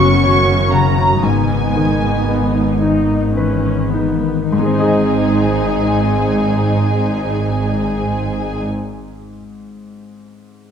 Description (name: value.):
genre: cinematic.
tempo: 34-42 BPM (dotted quarters).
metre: 6/8.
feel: rubato.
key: unclear.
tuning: A4 = 439 Hz.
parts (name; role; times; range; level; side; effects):
muted studio violin section; melody; 0.0-8.6 s; G#5 to C#6; -24 LUFS; left 2 dB; none.
muted studio violin section; second line; 0.0-8.6 s; G#4 to C#6; -23 LUFS; equal; none.
bright baby grand piano; accompaniment; 0.0-10.7 s; F#2 to D#5; -20 LUFS; left 2 dB; none.
muted studio viola section; accompaniment; 0.0-8.6 s; B3 to F#4; -22 LUFS; right 1 dB; none.
concert harp; arpeggios; 0.0-9.3 s; F#2 to D#5; -21 LUFS; left 10 dB; none.
muted studio cello section; bass; 0.0-8.6 s; F#2 to G#2; -21 LUFS; right 3 dB; none.
muted studio double bass section; bass; 0.0-8.6 s; F#1 to G#1; -21 LUFS; right 4 dB; none.
room: moderate scoring stage reverb, RT60 1.9 s.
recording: none.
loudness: -13 LUFS.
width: side -8 dB against mid.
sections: 0.0-4.5 A section; 4.5-7.9 B section.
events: slowing down 0.0-4.5.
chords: 0.0 F#sus4; 1.2 G#m; 4.5 G#.